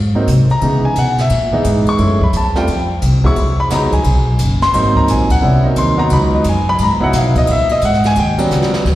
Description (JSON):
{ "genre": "jazz piano trio", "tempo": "175 BPM", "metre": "4/4", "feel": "swing 65% on 8ths", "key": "G# minor", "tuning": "A4 = 441 Hz", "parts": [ { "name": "upright bass", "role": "bass", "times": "0.0-9.0 s", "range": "F#1 to C#3", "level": "-14 LUFS", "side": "equal", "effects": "none" }, { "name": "warm grand piano", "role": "melody", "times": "0.1-8.8 s", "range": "E3 to C#6", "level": "-15 LUFS", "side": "equal", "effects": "slapback echo" }, { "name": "jazz brush drum kit", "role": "drums", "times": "0.3-9.0 s", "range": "brushed snare drum, crash cymbal, hi-hat, kick drum, ride cymbal, snare drum", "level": "-21 LUFS", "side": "equal", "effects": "none" } ], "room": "light reverb, small room ambience", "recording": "live gig heard through the venue's PA, recital hall reverb", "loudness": "-11 LUFS", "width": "side -14 dB against mid", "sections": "0.0-8.9 A section", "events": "grand piano solo 0.0-8.9; drum fill 8.5-8.9", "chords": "0.0 G#; 0.6 C#m7; 2.0 F#m9; 2.7 F5; 3.4 E; 4.7 G#7; 6.1 C#m11; 7.5 F#9; 8.2 D#7alt" }